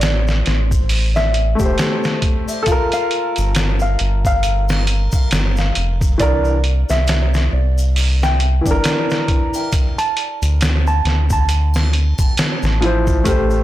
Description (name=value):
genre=trip hop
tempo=68 BPM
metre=4/4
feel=swing 58% on 16ths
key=unclear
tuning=A4 = 439 Hz
part: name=mellow electric guitar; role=melody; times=0.0-13.1 s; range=D5 to A5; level=-24 LUFS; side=right 1 dB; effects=vintage 12-bit sampler grit, tape echo
part: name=round analog bass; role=bass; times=0.0-13.6 s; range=E1 to D2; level=-16 LUFS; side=equal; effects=none
part: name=trip hop sampler-style drum kit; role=drums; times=0.0-13.5 s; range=hi-hat, kick drum, snare drum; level=-19 LUFS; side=equal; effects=none
part: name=tube shaker and triangle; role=percussion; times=0.0-13.6 s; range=none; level=-33 LUFS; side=left 1 dB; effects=none
part: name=warm upright piano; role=accompaniment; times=1.6-13.6 s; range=E3 to C5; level=-21 LUFS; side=left 1 dB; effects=harmonic tremolo, vintage 12-bit sampler grit, tape echo
part: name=dark detuned synth bell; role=arpeggios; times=13.3-13.6 s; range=A4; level=-24 LUFS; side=left 3 dB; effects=chorus
room=little or no reverb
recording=blown-out, overdriven recording, overdrive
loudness=-14 LUFS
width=side -14 dB against mid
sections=0.0-13.6 A section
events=none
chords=0.0 Am7; 2.7 Gm9; 6.2 C9; 9.7 D5